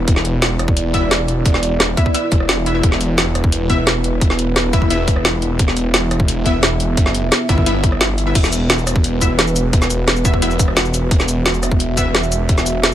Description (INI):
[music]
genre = dark technical drum and bass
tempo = 174 BPM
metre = 4/4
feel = straight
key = unclear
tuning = A4 = 440 Hz
[part]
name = dark analog pad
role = sustained chords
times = 0.0-12.9 s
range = B3 to E5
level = -22 LUFS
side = right 1 dB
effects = chorus, sidechain pumping
[part]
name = snarling distorted saw bass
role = bass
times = 0.0-12.9 s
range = E1 to G1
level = -20 LUFS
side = equal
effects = distortion, overdrive, sidechain pumping
[part]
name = drum and bass drum kit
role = drums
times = 0.1-12.9 s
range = cabasa, crash cymbal, hi-hat, rim click, snare drum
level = -17 LUFS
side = equal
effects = none
[part]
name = electronic kick drum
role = drums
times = 0.1-12.6 s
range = none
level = -15 LUFS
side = equal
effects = overdrive
[part]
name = orchestra-hit-like synth stab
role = stabs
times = 0.9-12.1 s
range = B3 to E5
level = -24 LUFS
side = left 2 dB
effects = built-in reverb, tape echo
[sound]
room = little or no reverb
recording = lossy compression artefacts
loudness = -13 LUFS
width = side -11 dB against mid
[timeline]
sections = 0.0-12.9 A section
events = none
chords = 0.0 E5